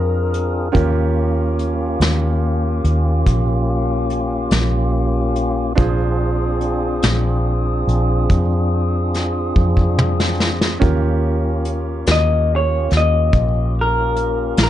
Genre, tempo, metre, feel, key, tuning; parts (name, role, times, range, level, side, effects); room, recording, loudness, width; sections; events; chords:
slow blues; 48 BPM (dotted quarters); 12/8; straight; A4 = 440 Hz
electric guitar through a small old amp; melody; 0.0-2.8, 12.1-14.7 s; Bb4 to Eb5; -20 LUFS; left 3 dB
bright grand piano; accompaniment; 0.0-14.7 s; Db4 to D5; -24 LUFS; right 5 dB
tonewheel organ; sustained chords; 0.0-14.7 s; Bb3 to Ab4; -22 LUFS; left 1 dB; slow rotary speaker
vintage muted fingered electric bass; bass; 0.0-14.7 s; Bb1 to F2; -18 LUFS; equal
vintage brush drum kit; drums; 0.3-14.7 s; hi-hat, kick drum, snare drum, toms; -19 LUFS; equal
light reverb; nothing above 10.3 kHz; -15 LUFS; side -12 dB against mid
0.0-14.7 A section
drum fill 9.6-10.8
0.0 Bb9; 0.7 Eb9; 5.8 Bb9; 10.8 Eb9